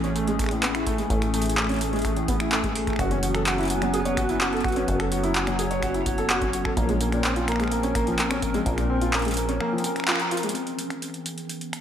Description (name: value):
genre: IDM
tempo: 127 BPM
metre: 4/4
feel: straight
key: unclear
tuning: A4 = 439 Hz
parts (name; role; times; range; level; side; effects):
- warbly tape-like pad; sustained chords; 0.0-11.8 s; E3 to C#5; -28 LUFS; left 1 dB; chorus, built-in reverb, phaser, sidechain pumping
- felt-muted upright piano; arpeggios; 0.0-10.5 s; A2 to C#5; -27 LUFS; equal; dub echo
- deep acid bass; bass; 0.0-9.6 s; F#1 to A#1; -28 LUFS; equal; none
- booming analog drum machine; drums; 0.0-11.8 s; finger snaps, handclaps, hi-hat; -28 LUFS; equal; dub echo
- electronic kick drum; drums; 0.4-8.8 s; none; -30 LUFS; equal; none
room: moderate echo chamber reverb, RT60 1.5 s, digital ambience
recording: echo-heavy mix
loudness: -22 LUFS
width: side -9 dB against mid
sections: 0.0-10.6 A section; 10.6-11.8 B section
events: band accent 10.1; drum fill 10.3; filter sweep on ambient pad 10.6-11.8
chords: 0.0 Amaj7; 3.0 F#sus4; 6.8 A#madd9; 10.6 C#m7